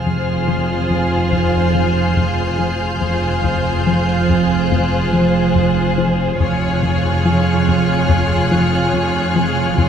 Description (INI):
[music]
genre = cinematic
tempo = 71 BPM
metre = 4/4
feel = straight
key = F minor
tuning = A4 = 441 Hz
[part]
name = rich symphonic violin section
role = melody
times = 0.0-9.9 s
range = C5 to Db5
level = -24 LUFS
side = left 5 dB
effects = none
[part]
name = warm symphonic violin section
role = second line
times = 0.0-9.9 s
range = Ab4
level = -24 LUFS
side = left 1 dB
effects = none
[part]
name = clear symphonic viola section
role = accompaniment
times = 0.0-9.9 s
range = F4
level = -24 LUFS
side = right 1 dB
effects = none
[part]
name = warm studio cello section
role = bass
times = 0.0-9.9 s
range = F2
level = -22 LUFS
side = right 6 dB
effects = none
[part]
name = warm symphonic double bass section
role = bass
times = 0.0-9.9 s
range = F1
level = -22 LUFS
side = right 1 dB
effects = none
[part]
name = analog drone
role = drone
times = 0.0-9.9 s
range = F2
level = -22 LUFS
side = equal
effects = chorus
[part]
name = rich symphonic violin section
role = texture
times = 0.0-9.9 s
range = C6 to G6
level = -28 LUFS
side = left 2 dB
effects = none
[part]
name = plucky analog bass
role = riff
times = 0.1-9.9 s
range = F2 to F3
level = -20 LUFS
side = left 1 dB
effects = none
[sound]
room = wet church reverb, RT60 3.5 s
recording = recorded in a church or concert hall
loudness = -14 LUFS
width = side -8 dB against mid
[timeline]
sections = 0.0-9.9 A section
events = none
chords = 0.0 Fm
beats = 0.49 1.33 2.18 | 3.02 3.87 4.71 5.56 | 6.40 7.25 8.09 8.94 | 9.78